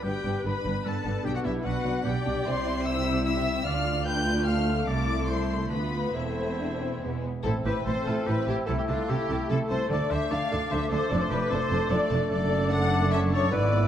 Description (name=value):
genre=quick classical-period movement for symphony orchestra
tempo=148 BPM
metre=3/4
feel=rubato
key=A minor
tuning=A4 = 440 Hz
part: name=rich chamber violin section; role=melody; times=0.0-13.9 s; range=E5 to G6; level=-37 LUFS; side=left 4 dB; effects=none
part: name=mellow small flute group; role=second line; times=0.0-13.9 s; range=E4 to E6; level=-36 LUFS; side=left 3 dB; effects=none
part: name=rich studio violin section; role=second line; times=0.0-13.9 s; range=G#3 to F#5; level=-32 LUFS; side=left 3 dB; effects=none
part: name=warm oboe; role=second line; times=0.0-13.9 s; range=D4 to G5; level=-37 LUFS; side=right 1 dB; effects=none
part: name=rich chamber viola section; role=accompaniment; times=0.0-13.9 s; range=B3 to E5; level=-37 LUFS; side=right 1 dB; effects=none
part: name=warm French horn section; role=sustained chords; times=0.0-13.9 s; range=G3 to A4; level=-33 LUFS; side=left 3 dB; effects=none
part: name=rich chamber double bass section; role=bass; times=0.0-13.9 s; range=E1 to D2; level=-31 LUFS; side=right 2 dB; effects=none
part: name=rich studio cello section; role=bass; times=0.0-13.9 s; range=C2 to D3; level=-31 LUFS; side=right 2 dB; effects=none
part: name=mellow bassoon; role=accompaniment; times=7.5-13.9 s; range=A3 to C4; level=-33 LUFS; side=right 2 dB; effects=none
room=moderate scoring stage reverb, RT60 1.8 s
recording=dark, warm production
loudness=-24 LUFS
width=side -10 dB against mid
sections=0.0-7.5 A section; 7.5-13.9 B section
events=none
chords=0.0 G; 1.2 G/B; 2.5 C; 3.7 Dm; 4.9 Am/C; 5.7 Bdim/D; 6.1 Am/E; 7.0 E; 7.5 Am; 8.7 Am/C; 9.9 Dm; 11.1 Dm/F; 12.3 D/F#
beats=| 0.04 0.44 0.85 | 1.25 1.65 2.05 | 2.45 2.85 3.25 | 3.66 4.06 4.47 | 4.88 5.29 5.71 | 6.14 6.58 7.02 | 7.45 7.86 8.27 | 8.68 9.09 9.50 | 9.90 10.31 10.71 | 11.11 11.51 11.91 | 12.32 12.72 13.12 | 13.52